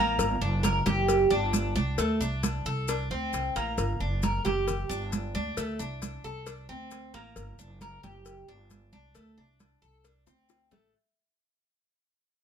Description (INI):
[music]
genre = latin, Cuban son and guajira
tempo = 134 BPM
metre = 4/4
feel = straight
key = G harmonic minor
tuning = A4 = 440 Hz
[part]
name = Cuban tres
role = arpeggios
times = 0.0-10.9 s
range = A3 to Bb4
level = -30 LUFS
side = right 1 dB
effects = none
[part]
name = upright bass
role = bass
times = 0.0-10.9 s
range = F#1 to D2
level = -32 LUFS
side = right 1 dB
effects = none
[part]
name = congas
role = percussion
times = 0.2-10.9 s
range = none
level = -32 LUFS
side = right 1 dB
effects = none
[part]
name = cowbell and bongos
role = percussion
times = 0.2-10.9 s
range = none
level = -36 LUFS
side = left 6 dB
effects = none
[part]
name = maracas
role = percussion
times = 0.2-10.9 s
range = none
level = -40 LUFS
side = left 7 dB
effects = none
[sound]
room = light reverb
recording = minimal, uncompressed stereo recording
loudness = -26 LUFS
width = side -8 dB against mid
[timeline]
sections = 0.0-10.9 A section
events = fade-out 0.0-10.9; drum fill 10.3-10.9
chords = 0.2 Gm; 2.0 D5; 3.8 Gm; 5.6 D5; 7.4 Gm; 9.2 D5